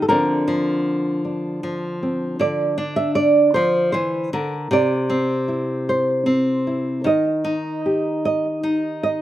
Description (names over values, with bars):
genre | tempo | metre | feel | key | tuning
folk, solo fingerstyle acoustic guitar | 52 BPM (dotted quarters) | 6/8 | rubato | unclear | A4 = 441 Hz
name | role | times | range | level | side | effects
nylon-string guitar | solo | 0.0-9.2 s | C3 to E5 | -18 LUFS | equal | slapback echo
room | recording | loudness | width
light reverb | recorded outdoors, with no room sound | -18 LUFS | side -13 dB against mid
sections
0.0-9.2 A section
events
none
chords
0.1 Bbadd9/D; 2.4 Dm9; 4.7 C; 7.1 Eb